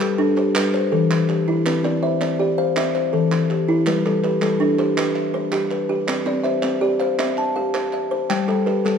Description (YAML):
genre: southern african traditional, mbira-style interlocking cycle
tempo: 108 BPM (dotted quarters)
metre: 12/8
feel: straight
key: G mixolydian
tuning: A4 = 439 Hz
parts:
  - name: buzzing kalimba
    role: arpeggios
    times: 0.0-9.0 s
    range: E3 to G5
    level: -22 LUFS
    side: right 5 dB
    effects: none
  - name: kalimba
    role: arpeggios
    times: 0.0-9.0 s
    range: E3 to A5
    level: -20 LUFS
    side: left 4 dB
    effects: none
  - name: group handclap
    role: percussion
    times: 0.0-9.0 s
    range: none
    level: -29 LUFS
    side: right 4 dB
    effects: none
room: moderate recital hall reverb, RT60 1.8 s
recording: minimal, uncompressed stereo recording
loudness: -18 LUFS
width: side -7 dB against mid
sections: 0.0-9.0 A section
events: none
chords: 0.0 G; 0.6 Em; 1.7 C; 2.8 Em; 3.9 G; 6.1 C; 8.3 G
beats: 0.01 0.56 1.11 | 1.67 2.22 2.77 3.32 | 3.87 4.43 4.98 5.53 | 6.08 6.64 7.19 7.74 | 8.30 8.85